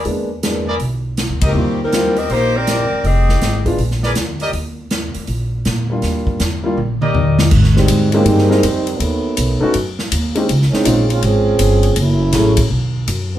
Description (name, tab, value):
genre	jazz, big band swing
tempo	161 BPM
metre	4/4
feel	swing 65% on 8ths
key	Eb major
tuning	A4 = 440 Hz
part	upright bass	bass	0.0-13.4 s	F1 to Bb2	-18 LUFS	equal	none
part	swinging big-band drum kit	drums	0.0-13.2 s	crash cymbal, hi-hat, kick drum, ride cymbal, snare drum, toms	-20 LUFS	equal	none
part	warm concert grand piano	accompaniment	0.1-12.6 s	Gb3 to Bb4	-18 LUFS	left 1 dB	none
part	warm trumpet section	stabs	0.7-4.5, 7.0-7.5 s	Eb4 to Eb5	-22 LUFS	left 1 dB	none
part	warm saxophone section	melody	1.5-3.7 s	Eb3 to Eb5	-18 LUFS	left 1 dB	none
part	warm trombone section	second line	7.8-13.4 s	D#3 to Ab4	-17 LUFS	right 2 dB	none
room	wet studio reverb, RT60 0.5 s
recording	band playing live in one room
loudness	-13 LUFS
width	side -12 dB against mid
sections	0.0-7.5 A section; 7.5-13.4 B section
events	band accent 1.4; drum fill 6.8-7.5; trombone section solo 7.5-13.4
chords	0.1 E7#11; 1.6 Eb6; 3.0 Fm9; 3.8 Bb; 4.5 Ebmaj7; 7.5 Abmaj7; 9.0 B9; 10.5 Dbmaj7; 12.0 Gbm7; 12.7 B5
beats	| 0.06 0.44 0.81 1.18 | 1.55 1.93 2.30 2.67 | 3.05 3.42 3.79 4.17 | 4.54 4.91 5.28 5.66 | 6.03 6.40 6.77 7.14 | 7.52 7.89 8.26 8.63 | 9.00 9.37 9.75 10.12 | 10.49 10.86 11.23 11.60 | 11.97 12.35 12.72 13.09